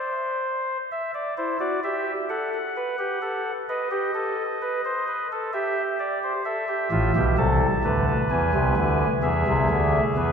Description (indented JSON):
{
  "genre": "classical, baroque-style 3-part fugue for pipe organ",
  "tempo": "65 BPM",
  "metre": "3/4",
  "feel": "straight",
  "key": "unclear",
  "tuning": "A4 = 440 Hz",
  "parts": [
    { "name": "chamber organ, soft reed", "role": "solo", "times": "0.0-10.3 s", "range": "A1 to A5", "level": "-22 LUFS", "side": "equal", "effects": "none" }
  ],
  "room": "wet church reverb, RT60 3.3 s",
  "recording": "heard from further back in the room",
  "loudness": "-22 LUFS",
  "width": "side -6 dB against mid",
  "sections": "0.0-10.3 A section",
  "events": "none",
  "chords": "0.0 N.C.; 0.9 Em; 2.8 B5; 3.7 B7; 5.5 Em/G; 6.5 Am; 8.3 E"
}